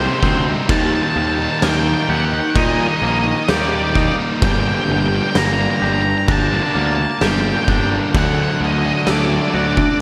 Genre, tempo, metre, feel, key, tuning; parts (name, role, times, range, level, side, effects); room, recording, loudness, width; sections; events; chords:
post-rock; 64 BPM; 4/4; straight; G harmonic minor; A4 = 440 Hz
octave-fuzz lead guitar; melody; 0.0-10.0 s; C5 to Bb5; -24 LUFS; equal; distortion, diffuse ambient delay
twangy electric guitar; arpeggios; 0.0-10.0 s; G2 to G4; -26 LUFS; equal; diffuse ambient delay
distorted electric guitar; riff; 0.0-10.0 s; G2 to Eb4; -26 LUFS; equal; distortion
sludgy distorted guitar; riff; 0.0-10.0 s; G2 to Eb4; -26 LUFS; equal; overdrive
fuzz picked electric bass; bass; 0.0-9.8 s; G1 to Bb2; -23 LUFS; equal; overdrive
oversized low-tuned drum kit; drums; 0.2-10.0 s; crash cymbal, kick drum, snare drum; -24 LUFS; equal
moderate lush hall reverb, RT60 2.5 s; dreamy mix soaked in reverb; -17 LUFS; mono
0.0-10.0 A section
0.0 Cm7; 0.7 Eb; 4.4 Gm; 8.1 D